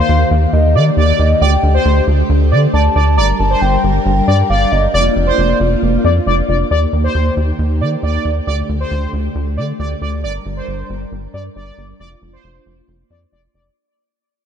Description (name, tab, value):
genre	synth-pop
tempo	136 BPM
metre	4/4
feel	straight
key	G minor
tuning	A4 = 438 Hz
part	hollow clarinet-like synth lead	melody	0.0-6.0 s	D5 to Bb5	-19 LUFS	left 2 dB	chorus, shimmer reverb, tape echo
part	analog synth brass	second line	0.0-13.6 s	C5 to D5	-20 LUFS	right 1 dB	chorus, shimmer reverb, tape echo
part	ensemble organ-string	sustained chords	0.0-13.8 s	D3 to Bb4	-20 LUFS	equal	ensemble chorus, low-pass filter, shimmer reverb
part	rubbery square bass	bass	0.0-13.7 s	F1 to Eb3	-15 LUFS	equal	none
room	light reverb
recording	dark, warm production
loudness	-12 LUFS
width	side -8 dB against mid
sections	0.0-6.7 A section; 6.7-13.8 B section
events	fade-out 6.7-13.8; filter sweep on string machine 6.7-13.8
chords	0.0 Eb; 1.4 Dsus4; 3.2 Gm; 4.9 Bb/F; 6.7 Eb; 8.5 Dsus4; 10.2 Gm; 12.0 Bb/F